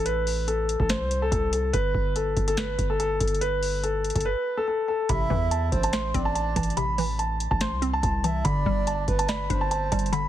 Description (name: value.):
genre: hip hop, trap.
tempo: 143 BPM.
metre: 4/4.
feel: half-time.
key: A minor.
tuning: A4 = 441 Hz.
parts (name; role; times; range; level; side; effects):
warm concert grand piano; melody; 0.0-10.3 s; A4 to C6; -27 LUFS; left 1 dB; ping-pong delay.
hard-hitting 808-style bass; bass; 0.0-10.3 s; F1 to E2; -28 LUFS; equal; none.
booming analog drum machine; drums; 0.1-10.2 s; hi-hat, kick drum, snare drum; -28 LUFS; equal; none.
breathy flute-like synth lead; second line; 5.1-10.1 s; B4 to E5; -32 LUFS; right 6 dB; chorus, ping-pong delay.
hollow square pluck; accompaniment; 5.1-10.3 s; C3 to D5; -30 LUFS; left 1 dB; chorus.
room: light reverb.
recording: heavily compressed radio sound, multiband compression.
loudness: -23 LUFS.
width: side -12 dB against mid.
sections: 0.0-5.1 A section; 5.1-10.3 B section.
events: none.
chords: 0.0 Am; 1.7 Fadd9 (rootless); 5.1 Am; 8.4 G5.